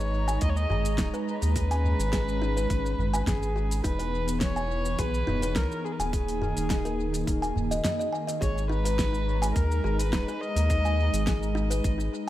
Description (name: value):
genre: organic downtempo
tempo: 105 BPM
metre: 4/4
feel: straight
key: G# minor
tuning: A4 = 440 Hz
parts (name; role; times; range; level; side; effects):
- dark kamancheh; melody; 0.0-11.6 s; G#4 to D#5; -33 LUFS; left 1 dB; tape echo
- warm analog pad; sustained chords; 0.0-12.3 s; D#3 to A#5; -34 LUFS; right 1 dB; chorus, sidechain pumping
- kalimba; arpeggios; 0.0-12.3 s; D#4 to G#5; -34 LUFS; equal; tape echo
- round analog bass; bass; 0.0-12.1 s; D#1 to D#2; -28 LUFS; equal; tube saturation, sidechain pumping
- deep house drum kit; drums; 0.0-12.1 s; hi-hat, shaker, snare drum; -34 LUFS; equal; small room ambience
- electronic kick drum; drums; 0.4-12.0 s; none; -29 LUFS; equal; small room ambience
- udu; percussion; 0.7-8.0 s; none; -34 LUFS; left 1 dB; none
room: light reverb, studio ambience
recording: echo-heavy mix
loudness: -24 LUFS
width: side -14 dB against mid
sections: 0.0-8.4 A section; 8.4-12.3 B section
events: none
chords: 0.0 G#m; 3.8 E6; 6.1 D#sus4; 8.4 G#m